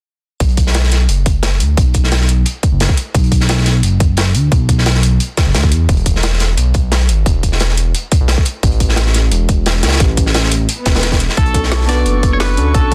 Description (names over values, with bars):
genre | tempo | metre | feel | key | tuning
liquid drum and bass | 175 BPM | 4/4 | straight | B minor | A4 = 440 Hz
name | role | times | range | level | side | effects
smooth synth bass | bass | 0.4-12.9 s | E1 to E2 | -16 LUFS | equal | none
crunchy breakbeat drum kit | drums | 0.4-12.9 s | hi-hat, snare drum | -22 LUFS | equal | high-pass filter on hats, high-pass filter on snare, high-pass filter on room
drum and bass drum kit | drums | 0.4-12.9 s | hi-hat, snare drum | -25 LUFS | equal | none
electronic kick drum | drums | 0.4-12.9 s | none | -16 LUFS | equal | none
swell | sound effects | 10.8-11.4 s | none | -28 LUFS | equal | none
twangy electric guitar | melody | 11.4-12.9 s | A4 to D5 | -23 LUFS | equal | harmonic tremolo, dub echo
warm chamber string section | sustained chords | 11.4-12.9 s | A4 to C#6 | -28 LUFS | equal | vintage 12-bit sampler grit, sidechain pumping
tine electric piano | accompaniment | 11.5-12.9 s | B3 to B4 | -22 LUFS | equal | none
room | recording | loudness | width
small room ambience | dense, heavily limited modern master | -14 LUFS | mono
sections
0.4-12.9 A section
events
swell 10.8-11.4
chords
0.4 B5; 5.9 E5; 8.6 A5; 11.4 Bm9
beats
| 0.40 0.75 1.09 1.43 | 1.77 2.12 2.46 2.80 | 3.15 3.49 3.83 4.17 | 4.52 4.86 5.20 5.55 | 5.89 6.23 6.58 6.92 | 7.26 7.60 7.95 8.29 | 8.63 8.97 9.32 9.66 | 10.00 10.35 10.69 11.03 | 11.38 11.72 12.06 12.40 | 12.75